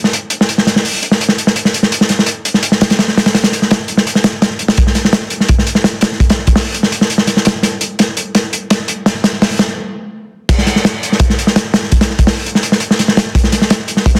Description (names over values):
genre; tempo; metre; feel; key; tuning
drum and bass; 168 BPM; 4/4; straight; none; none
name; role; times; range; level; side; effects
crunchy breakbeat drum kit; drums; 0.0-14.2 s; crash cymbal, hi-hat, kick drum, snare drum; -13 LUFS; equal; none
room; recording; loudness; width
light reverb; dense, heavily limited modern master; -13 LUFS; mono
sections
0.0-4.8 A section; 4.8-10.5 B section; 10.5-14.2 C section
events
build-up 4.8-10.5; drum fill 7.6-9.8; stop 9.8-10.5; drop 10.5-14.2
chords
none